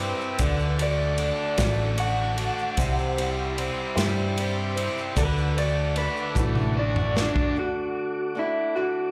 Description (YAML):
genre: folk rock and heartland rock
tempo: 50 BPM (dotted quarters)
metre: 6/8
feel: straight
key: D mixolydian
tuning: A4 = 439 Hz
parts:
  - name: electric guitar through a small old amp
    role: melody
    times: 0.0-9.1 s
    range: D4 to F#5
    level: -31 LUFS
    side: equal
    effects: plate reverb, slapback echo, analog delay
  - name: bright upright piano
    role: accompaniment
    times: 0.0-7.2 s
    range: F#4 to E5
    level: -40 LUFS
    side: equal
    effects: none
  - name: picked acoustic archtop guitar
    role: accompaniment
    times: 0.0-9.1 s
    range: C3 to C5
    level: -36 LUFS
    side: equal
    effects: plate reverb, slapback echo
  - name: mellow tonewheel organ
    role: sustained chords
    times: 0.0-9.1 s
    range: C4 to E6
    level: -41 LUFS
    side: equal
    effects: none
  - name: crunchy overdriven guitar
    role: riff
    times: 0.0-7.6 s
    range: C3 to G4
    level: -34 LUFS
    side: equal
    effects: slapback echo
  - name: hollow-body short-scale picked electric bass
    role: bass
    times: 0.0-7.3 s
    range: A1 to G2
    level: -29 LUFS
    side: equal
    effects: none
  - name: tube shaker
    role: percussion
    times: 0.2-7.3 s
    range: none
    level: -46 LUFS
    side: equal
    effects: none
  - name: natural country drum kit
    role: drums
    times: 0.4-7.5 s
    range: kick drum, ride cymbal, snare drum, toms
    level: -32 LUFS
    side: equal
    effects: none
room: light reverb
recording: live gig heard through the venue's PA, club reverb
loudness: -25 LUFS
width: mono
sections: 0.0-7.5 A section; 7.5-9.1 B section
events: clean electric guitar solo 0.0-7.5; drum fill 6.4-7.5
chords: 0.4 D; 2.8 C; 5.2 D